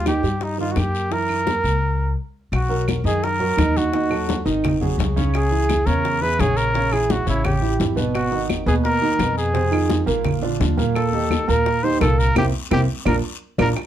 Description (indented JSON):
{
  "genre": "Afro-Cuban jazz",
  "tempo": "171 BPM",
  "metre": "4/4",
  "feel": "straight",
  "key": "B major",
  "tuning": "A4 = 439 Hz",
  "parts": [
    { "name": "mellow trumpet", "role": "melody", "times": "0.0-13.7 s", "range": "Eb4 to B#4", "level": "-23 LUFS", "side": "equal", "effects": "none" },
    { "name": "warm concert grand piano", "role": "accompaniment", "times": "0.0-13.7 s", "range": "A#2 to D#5", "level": "-23 LUFS", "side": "right 4 dB", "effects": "none" },
    { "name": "upright bass", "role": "bass", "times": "0.0-13.7 s", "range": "G#1 to G2", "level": "-23 LUFS", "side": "left 1 dB", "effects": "none" },
    { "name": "bongos", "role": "percussion", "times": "0.1-13.9 s", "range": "none", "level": "-29 LUFS", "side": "left 7 dB", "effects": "none" },
    { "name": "claves", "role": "percussion", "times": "0.1-13.9 s", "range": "none", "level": "-33 LUFS", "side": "right 3 dB", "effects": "none" },
    { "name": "congas", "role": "percussion", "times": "0.1-13.9 s", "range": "none", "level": "-27 LUFS", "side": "left 1 dB", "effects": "none" },
    { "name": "guiro", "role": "percussion", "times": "0.1-13.9 s", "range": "none", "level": "-37 LUFS", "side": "left 7 dB", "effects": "none" }
  ],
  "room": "moderate studio reverb, RT60 0.6 s",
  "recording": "dark, warm production",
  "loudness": "-18 LUFS",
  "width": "side -11 dB against mid",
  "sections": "0.0-2.5 A section; 2.5-13.8 B section",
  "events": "stop 1.8-2.5; band accent 12.4-13.8; drum fill 12.7-13.8",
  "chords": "0.0 Eb; 1.1 Gb7; 2.5 Bmaj7; 3.9 D#dim; 4.6 G#5; 5.3 C#m; 6.7 A#m7b5; 7.4 A9; 8.2 G#m7; 9.6 Fm7; 10.3 A#; 11.0 D#6; 12.4 C7; 13.1 A#",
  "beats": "0.06 0.41 0.76 | 1.12 1.47 1.82 2.17 | 2.53 2.88 3.23 3.58 | 3.93 4.28 4.64 4.99 | 5.34 5.69 6.04 6.39 | 6.74 7.10 7.45 7.80 | 8.15 8.50 8.85 9.20 | 9.55 9.91 10.26 10.61 | 10.96 11.31 11.66 12.01 | 12.36 12.71 13.07 13.42 | 13.77"
}